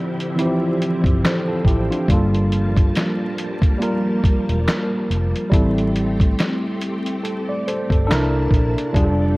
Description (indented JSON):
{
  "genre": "lo-fi hip hop",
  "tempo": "70 BPM",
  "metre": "4/4",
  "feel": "swing 57% on 16ths",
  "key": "D minor",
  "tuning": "A4 = 437 Hz",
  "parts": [
    { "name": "tine electric piano", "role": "accompaniment", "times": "0.0-9.4 s", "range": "E3 to D5", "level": "-21 LUFS", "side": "equal", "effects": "overdrive, fast stereo tremolo, cassette tape, low-pass filter" },
    { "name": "string machine, violins", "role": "sustained chords", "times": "0.0-9.4 s", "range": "C3 to A5", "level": "-28 LUFS", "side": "equal", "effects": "ensemble chorus, low-pass filter" },
    { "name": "lo-fi sampler-style drum kit", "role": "drums", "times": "0.2-9.2 s", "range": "handclaps, hi-hat, kick drum, snare drum", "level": "-19 LUFS", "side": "equal", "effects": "none" },
    { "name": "vintage muted fingered electric bass", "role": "bass", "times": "1.0-9.4 s", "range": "E1 to C2", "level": "-21 LUFS", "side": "equal", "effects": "none" }
  ],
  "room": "light reverb",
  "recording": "worn, warbling old tape, cassette tape, vinyl crackle, warbly pitch drift",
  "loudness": "-17 LUFS",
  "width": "side -22 dB against mid",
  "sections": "0.0-9.4 A section",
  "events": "none",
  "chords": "0.0 Dm11; 2.1 Gm9; 5.5 Am7; 8.1 C13"
}